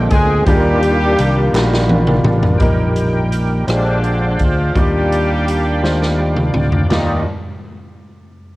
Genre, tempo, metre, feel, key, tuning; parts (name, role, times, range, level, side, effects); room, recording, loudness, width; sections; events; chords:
slow gospel; 56 BPM (dotted quarters); 6/8; straight; Eb major; A4 = 442 Hz
clear horn section; melody; 0.0-7.3 s; D3 to Ab4; -19 LUFS; equal; cassette tape
clear grand piano; accompaniment; 0.0-7.2 s; Eb2 to D5; -21 LUFS; equal; cassette tape
bright tonewheel organ; sustained chords; 0.0-7.2 s; D3 to G5; -21 LUFS; right 1 dB; fast rotary speaker, overdrive, chorus vibrato, cassette tape
fingered electric bass; bass; 0.0-7.2 s; A1 to Eb2; -17 LUFS; equal
swinging big-band drum kit; drums; 0.1-7.1 s; china cymbal, hi-hat, kick drum, rim click, snare drum, toms; -19 LUFS; equal
group handclap; percussion; 1.6-1.9 s; -27 LUFS; right 3 dB
little or no reverb; home recording on cassette; -13 LUFS; side -19 dB against mid
0.0-2.6 A section; 2.6-6.9 B section; 6.9-8.6 C section
drum fill 1.5-2.6, 5.8-6.9; grand piano fill 5.8-6.9
0.5 Ebmaj9; 2.6 Eb/Bb; 3.7 Bb13; 4.8 Ebmaj9